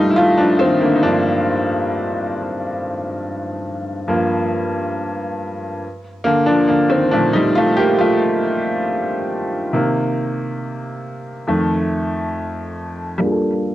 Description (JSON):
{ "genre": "R&B", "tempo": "69 BPM", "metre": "4/4", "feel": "straight", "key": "G minor", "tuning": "A4 = 440 Hz", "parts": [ { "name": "bright grand piano", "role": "solo", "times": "0.0-13.7 s", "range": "F2 to A4", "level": "-16 LUFS", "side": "equal", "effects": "low-pass filter, cassette tape, analog delay" } ], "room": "moderate booth ambience, RT60 0.2 s", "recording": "home recording on cassette", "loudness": "-16 LUFS", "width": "side -14 dB against mid", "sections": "0.0-13.2 A section", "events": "grand piano solo 0.0-13.2", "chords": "0.0 Gm9; 5.8 Bbmaj7; 9.7 Cm7; 11.5 F7; 13.2 Gm9" }